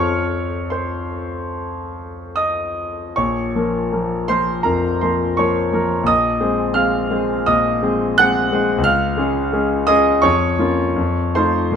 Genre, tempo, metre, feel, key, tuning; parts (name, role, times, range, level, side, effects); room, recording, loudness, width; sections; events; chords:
classical, romantic character piece for solo piano; 71-92 BPM; 4/4; rubato; Bb minor; A4 = 439 Hz
clear concert grand piano; solo; 0.0-11.8 s; Bb1 to Gb6; -16 LUFS; equal
light reverb; close, detailed microphones; -16 LUFS; side -7 dB against mid
0.0-11.8 A section
0.0 F; 3.2 Bbm; 6.1 Ab/Bb; 8.8 Db; 10.2 Bbm/F; 11.0 F7